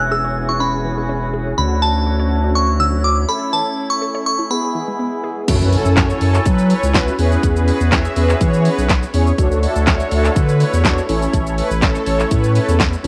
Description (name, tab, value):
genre	dance-pop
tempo	123 BPM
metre	4/4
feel	straight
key	unclear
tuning	A4 = 440 Hz
part	glassy synth bell	melody	0.0-5.2 s	A5 to E6	-22 LUFS	equal	chorus, phaser, low-pass filter, tape echo
part	mellow synth brass	accompaniment	0.0-13.1 s	B3 to E5	-25 LUFS	equal	chorus, phaser, sidechain pumping, low-pass filter
part	mellow woodwind section	sustained chords	0.0-13.1 s	D3 to G#5	-30 LUFS	equal	sidechain pumping, low-pass filter
part	saturated sub bass	bass	0.0-13.1 s	E1 to F#3	-19 LUFS	equal	sidechain pumping
part	unison pluck	arpeggios	0.1-5.3 s	D3 to C#5	-31 LUFS	equal	sidechain pumping, low-pass filter, tape echo
part	house drum kit	drums	5.5-13.1 s	crash cymbal, handclaps, hi-hat, kick drum, shaker, snare drum	-20 LUFS	equal	none
part	impact	sound effects	5.5-7.4 s	none	-30 LUFS	equal	none
room	light reverb, digital ambience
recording	none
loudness	-17 LUFS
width	mono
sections	0.0-5.5 A section; 5.5-13.1 B section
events	filter sweep 0.0-5.5; break 3.5-5.5; drop 5.5-13.1; impact 5.5-7.4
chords	0.0 E6; 1.6 Dmaj7; 3.3 A; 4.5 E; 5.5 F#m7; 7.2 E6; 9.4 Dmaj7; 11.1 A